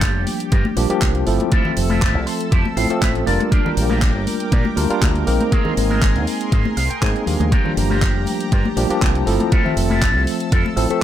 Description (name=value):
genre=nu-disco, nu disco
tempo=120 BPM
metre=4/4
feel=swing 53% on 16ths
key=unclear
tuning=A4 = 441 Hz
part: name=barky tine electric piano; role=accompaniment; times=0.0-11.0 s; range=F3 to E5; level=-21 LUFS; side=equal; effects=medium stereo tremolo, sidechain pumping, dub echo
part: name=lush unison pad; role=sustained chords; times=0.0-11.0 s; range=G4 to E6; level=-30 LUFS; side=equal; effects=chorus, sidechain pumping
part: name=electric guitar with an envelope filter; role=riff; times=0.0-11.0 s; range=C4 to C6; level=-26 LUFS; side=right 1 dB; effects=lush chorus, dub echo
part: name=fingered electric bass with an envelope filter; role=bass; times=0.0-10.9 s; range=F1 to Bb2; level=-21 LUFS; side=equal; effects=none
part: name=electronic kick drum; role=drums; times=0.0-10.6 s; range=none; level=-17 LUFS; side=equal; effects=overdrive
part: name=pop drum kit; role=drums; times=0.0-11.0 s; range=handclaps, hi-hat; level=-27 LUFS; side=right 1 dB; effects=overdrive
part: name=congas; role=percussion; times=0.3-10.7 s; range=none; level=-26 LUFS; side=left 3 dB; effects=none
room=little or no reverb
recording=none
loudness=-16 LUFS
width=side -11 dB against mid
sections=0.0-11.0 A section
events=clean electric guitar fill 2.0-3.5, 6.5-7.5, 10.5-11.0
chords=0.0 Fmaj7; 3.5 Bb6; 5.5 Abadd9; 7.5 Fmaj7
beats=0.02 0.52 1.02 | 1.52 2.02 2.52 3.02 | 3.52 4.02 4.52 5.02 | 5.52 6.02 6.52 7.02 | 7.52 8.02 8.52 9.02 | 9.52 10.02 10.52 11.02